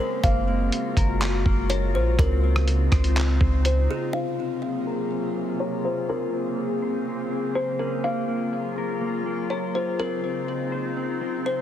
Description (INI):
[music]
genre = hip hop, atmospheric cloud-rap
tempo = 123 BPM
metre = 4/4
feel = half-time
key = unclear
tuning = A4 = 436 Hz
[part]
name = kalimba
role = melody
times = 0.0-11.6 s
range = Ab4 to F5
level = -30 LUFS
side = left 1 dB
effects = low-pass filter, digital delay
[part]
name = glassy FM pad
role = sustained chords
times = 0.0-11.6 s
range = C3 to Ab4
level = -28 LUFS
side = left 1 dB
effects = ensemble chorus, built-in reverb, sidechain pumping, low-pass filter
[part]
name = mellow electric guitar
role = arpeggios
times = 0.0-11.6 s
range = Bb3 to C5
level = -32 LUFS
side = left 3 dB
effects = low-pass filter, digital delay
[part]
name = soft 808-style bass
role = bass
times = 0.2-3.9 s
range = Gb1 to Db2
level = -22 LUFS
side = equal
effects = none
[part]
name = lo-fi sampler-style drum kit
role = drums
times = 0.2-3.8 s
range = handclaps, hi-hat, kick drum, rim click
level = -24 LUFS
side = equal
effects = none
[sound]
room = digital ambience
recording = heavily compressed radio sound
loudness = -22 LUFS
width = side -10 dB against mid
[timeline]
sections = 0.0-4.1 A section; 4.1-11.6 B section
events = filter sweep 4.1-11.6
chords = 0.2 Gbmaj9; 2.2 Dbmaj9; 4.1 Ab13; 6.1 Bbm9; 8.0 Gbmaj9; 10.0 Dbmaj9